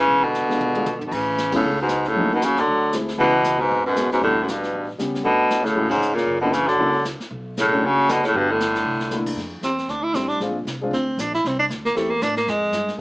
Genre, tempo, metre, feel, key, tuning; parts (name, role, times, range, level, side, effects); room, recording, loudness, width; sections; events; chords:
jazz, small-group swing and bop; 233 BPM; 4/4; swing 58% on 8ths; A major, F major from 9.4 s; A4 = 442 Hz
breathy baritone saxophone; melody; 0.0-9.3 s; F#2 to D3; -19 LUFS; equal
clear tenor saxophone; second line; 0.0-13.0 s; A2 to E4; -24 LUFS; right 1 dB
upright bass; bass; 0.0-13.0 s; E1 to A2; -33 LUFS; equal
jazz brush drum kit; drums; 0.1-13.0 s; brushed snare drum, crash cymbal, hi-hat, kick drum, ride cymbal, snare drum, toms; -33 LUFS; equal
warm grand piano; accompaniment; 0.5-13.0 s; F#3 to G4; -26 LUFS; left 1 dB
moderate club reverb, RT60 0.7 s; small speaker sound; -18 LUFS; side -24 dB against mid
0.0-1.1 A section; 1.1-9.4 B section; 9.4-13.0 C section
drum fill 0.6-1.1, 8.9; band accent 1.5, 5.9; tenor saxophone solo 9.4-13.0
0.1 E7b9; 1.1 Amaj9; 2.1 D#m7b5; 2.7 D7#11; 3.2 C#m7; 4.2 Em9; 4.7 A9; 5.2 Dmaj9#11; 6.3 F#7b13; 7.3 B7sus2; 8.3 Gsus2; 8.9 C13; 9.4 Fmaj13; 10.4 Bb9; 11.4 Am7; 12.5 Fmadd9